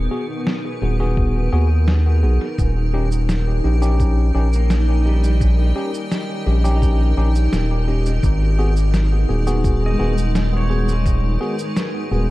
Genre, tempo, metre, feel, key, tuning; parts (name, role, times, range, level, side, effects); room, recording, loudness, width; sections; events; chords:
ambient dub; 85 BPM; 4/4; straight; G# minor; A4 = 440 Hz
granular cloud pad; sustained chords; 0.0-12.3 s; G#3 to G5; -26 LUFS; equal; built-in reverb
pedal steel guitar; arpeggios; 0.0-12.3 s; G3 to D#6; -33 LUFS; equal; dub echo
round analog bass; bass; 0.0-12.3 s; D#1 to D#2; -16 LUFS; equal; tube saturation
tine electric piano; stabs; 0.1-12.3 s; B3 to G#4; -26 LUFS; left 1 dB; dub echo
electronic snare drum and cabasa; drums; 0.5-11.9 s; -26 LUFS; equal; dub echo
electronic kick drum; drums; 1.2-11.2 s; -19 LUFS; equal
digital ambience; dark, warm production, vinyl crackle; -16 LUFS; side -18 dB against mid
0.0-12.3 A section
0.0 G#m7; 2.6 D#7; 8.2 G#m7